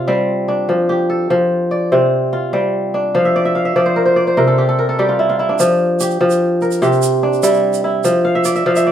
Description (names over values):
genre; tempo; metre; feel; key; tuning
west african traditional, West African string and xylophone music; 98 BPM (dotted quarters); 12/8; straight; F major; A4 = 439 Hz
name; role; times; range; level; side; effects
kora; arpeggios; 0.0-8.9 s; C3 to F5; -13 LUFS; equal; none
tube shaker; percussion; 5.6-8.9 s; none; -26 LUFS; right 8 dB; none
room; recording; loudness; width
moderate studio reverb, RT60 0.8 s; band playing live in one room; -13 LUFS; side -10 dB against mid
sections
0.0-5.6 A section; 5.6-8.9 A section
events
kora fill 3.1-5.6, 8.3-8.9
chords
0.0 C5; 0.7 F; 1.9 C5; 3.1 Dm9/F; 4.4 C5; 5.6 Fsus24; 6.8 C; 8.0 Fmaj7(no3)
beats
0.07 | 0.69 1.30 1.92 2.53 | 3.14 3.76 4.37 4.98 | 5.60 6.21 6.82 7.43 | 8.05 8.66